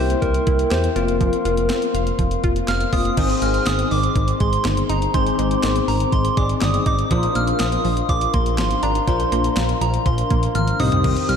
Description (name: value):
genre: synth-pop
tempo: 122 BPM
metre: 4/4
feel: straight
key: unclear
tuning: A4 = 439 Hz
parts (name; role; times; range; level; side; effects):
- soft struck synth lead; melody; 0.0-11.4 s; Bb4 to F6; -24 LUFS; right 1 dB; chorus, diffuse ambient delay
- bell-like tine electric piano; accompaniment; 0.0-11.4 s; Bb3 to D5; -25 LUFS; left 5 dB; ensemble chorus
- glass harmonica; sustained chords; 0.0-11.4 s; D4 to D6; -28 LUFS; left 3 dB; stereo widening
- wide unison pluck; arpeggios; 0.0-11.4 s; Eb3 to F5; -27 LUFS; right 2 dB; diffuse ambient delay
- smooth gliding synth bass; bass; 0.0-11.4 s; F1 to E2; -22 LUFS; equal; none
- clean 12-bit digital drum machine; drums; 0.1-11.4 s; crash cymbal, handclaps, hi-hat, kick drum, snare drum, toms; -24 LUFS; equal; none
room: moderate lush hall reverb, RT60 1.9 s, digital ambience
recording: dreamy mix soaked in reverb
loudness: -17 LUFS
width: side -7 dB against mid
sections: 0.0-3.2 A section; 3.2-11.4 B section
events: drum fill 10.6-11.0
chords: 0.0 C7; 1.0 Fsus4; 3.2 Ab; 7.1 Bbadd9; 10.8 Cm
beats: 0.22 0.71 | 1.21 1.70 2.19 2.68 | 3.17 3.67 4.16 4.65 | 5.14 5.63 6.12 6.62 | 7.11 7.60 8.09 8.58 | 9.08 9.57 10.06 10.55 | 11.04